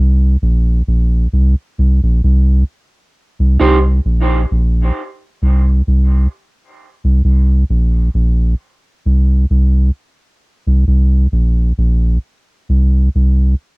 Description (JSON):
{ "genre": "dub reggae", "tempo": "66 BPM", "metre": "4/4", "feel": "swing 55% on 16ths", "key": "unclear", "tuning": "A4 = 440 Hz", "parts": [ { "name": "soft dub sub bass", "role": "bass", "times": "0.0-13.5 s", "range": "Bb1 to C2", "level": "-11 LUFS", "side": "equal", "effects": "none" }, { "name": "electric guitar at the edge of break-up", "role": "accompaniment", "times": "3.6-3.8 s", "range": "Eb4 to C5", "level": "-17 LUFS", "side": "right 3 dB", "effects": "cassette tape, dub echo" } ], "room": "little or no reverb", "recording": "home recording on cassette", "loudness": "-12 LUFS", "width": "side -26 dB against mid", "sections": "0.0-3.1 A section; 3.1-13.8 B section", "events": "break 0.0-3.1", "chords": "0.0 Bbsus2; 3.1 N.C.; 6.8 Bbsus2" }